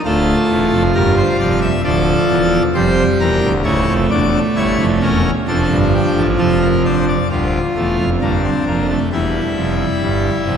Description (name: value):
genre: classical, baroque-style 4-part fugue for pipe organ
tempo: 66 BPM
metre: 4/4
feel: straight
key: unclear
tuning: A4 = 440 Hz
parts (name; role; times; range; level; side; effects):
- pipe organ, full organ; solo; 0.1-10.6 s; C#1 to E5; -13 LUFS; equal; none
room: wet church reverb, RT60 3.6 s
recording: none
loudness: -13 LUFS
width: side -7 dB against mid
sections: 0.0-7.3 A section; 7.3-10.6 B section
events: none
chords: 0.0 Dm; 3.7 A7/C#; 5.5 Dm/F; 7.3 Bb/D; 9.1 Em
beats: | 0.05 0.95 1.84 2.75 | 3.66 4.56 5.48 6.39 | 7.30 8.21 9.12 10.02